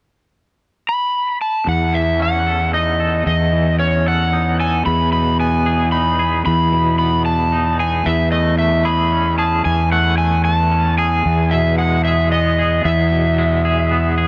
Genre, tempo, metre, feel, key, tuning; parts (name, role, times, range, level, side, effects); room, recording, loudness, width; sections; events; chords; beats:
rock; 113 BPM; 3/4; straight; E major; A4 = 439 Hz
overdriven slide guitar; melody; 0.9-14.1 s; C#5 to B5; -21 LUFS; equal; analog delay
twangy electric guitar; arpeggios; 1.7-14.3 s; E2 to A4; -24 LUFS; equal; tremolo, analog delay
fuzz fingered electric bass; bass; 1.7-14.3 s; E2; -20 LUFS; equal; overdrive
light reverb; -17 LUFS; mono
0.1-1.7 A section; 1.7-14.3 B section
0.1 N.C.; 1.7 F#m13/E; 4.9 Emaj7; 8.1 Amaj7/E; 11.3 E
| 0.08 0.61 1.14 | 1.67 2.20 2.73 | 3.27 3.80 4.33 | 4.86 5.39 5.93 | 6.46 6.99 7.52 | 8.06 8.59 9.12 | 9.65 10.19 10.72 | 11.25 11.78 12.32 | 12.85 13.38 13.91